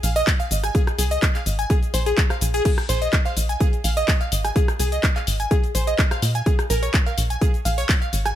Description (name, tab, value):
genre	progressive house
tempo	126 BPM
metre	4/4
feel	straight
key	unclear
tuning	A4 = 440 Hz
part	glassy wavetable pluck	arpeggios	0.0-8.3 s	Ab4 to Ab5	-25 LUFS	equal	chorus, sidechain pumping, digital delay
part	tight sequencer bass	bass	0.0-8.3 s	Ab1 to Bb2	-22 LUFS	equal	sidechain pumping
part	house drum kit	drums	0.0-8.3 s	crash cymbal, handclaps, hi-hat, rim click, shaker	-26 LUFS	left 1 dB	none
part	electronic kick drum	drums	0.3-8.0 s	none	-20 LUFS	equal	none
room	digital ambience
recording	none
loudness	-18 LUFS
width	side -12 dB against mid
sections	0.0-8.4 A section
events	none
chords	0.0 Ab6; 6.5 Bb7(no3)